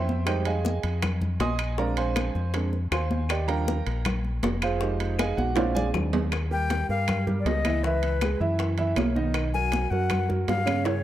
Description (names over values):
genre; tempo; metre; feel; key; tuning
Afro-Cuban jazz; 159 BPM; 4/4; straight; Eb major; A4 = 440 Hz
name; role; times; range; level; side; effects
warm grand piano; accompaniment; 0.0-11.0 s; C#3 to Eb6; -29 LUFS; right 4 dB; none
deep dub fingered electric bass; bass; 0.0-11.0 s; F1 to G2; -27 LUFS; equal; none
congas; percussion; 0.1-11.0 s; none; -32 LUFS; left 1 dB; none
bongos; percussion; 0.3-11.0 s; none; -37 LUFS; left 7 dB; none
claves; percussion; 0.3-10.9 s; none; -39 LUFS; left 9 dB; none
timbales; percussion; 0.3-10.9 s; none; -34 LUFS; right 6 dB; none
bright reedy concert flute; melody; 6.5-11.0 s; Cb5 to Ab5; -29 LUFS; left 5 dB; none
room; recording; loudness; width
moderate spring reverb, RT60 2.5 s; none; -23 LUFS; side -12 dB against mid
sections
0.0-6.3 A section; 6.3-11.0 B section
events
grand piano solo 0.0-6.3; drum fill 5.4-6.3, 10.9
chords
0.3 Fm9; 1.8 Bb9; 3.3 Ebmaj9; 4.8 Fm7; 5.6 Bb9; 6.3 Ebadd9; 7.8 Dbm7; 8.6 Gb7; 9.3 Bmaj9